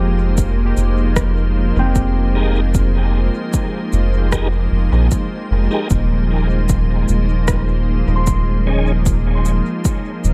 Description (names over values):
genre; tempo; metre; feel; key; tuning
ambient dub; 76 BPM; 4/4; straight; F minor; A4 = 440 Hz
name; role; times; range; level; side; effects
soft additive organ-like pad; sustained chords; 0.0-10.3 s; F3 to C5; -24 LUFS; equal; ensemble chorus, built-in reverb
concert harp; arpeggios; 0.0-10.0 s; C4 to C6; -30 LUFS; equal; dub echo
soft dub sub bass; bass; 0.0-10.3 s; Eb1 to Bb1; -18 LUFS; equal; none
electronic kick drum; drums; 0.4-10.0 s; none; -22 LUFS; equal; overdrive
electronic shaker and rim click; drums; 0.4-10.3 s; none; -29 LUFS; equal; dub echo
tonewheel organ; stabs; 2.4-8.9 s; Db4 to Bb4; -29 LUFS; equal; chorus vibrato, fast rotary speaker, dub echo
room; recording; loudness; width
digital ambience; dark, warm production; -17 LUFS; mono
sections
0.0-10.3 A section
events
none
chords
0.0 Fm11; 5.9 Ebsus4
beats
0.38 1.17 1.96 | 2.75 3.54 4.33 5.12 | 5.90 6.69 7.48 8.27 | 9.06 9.85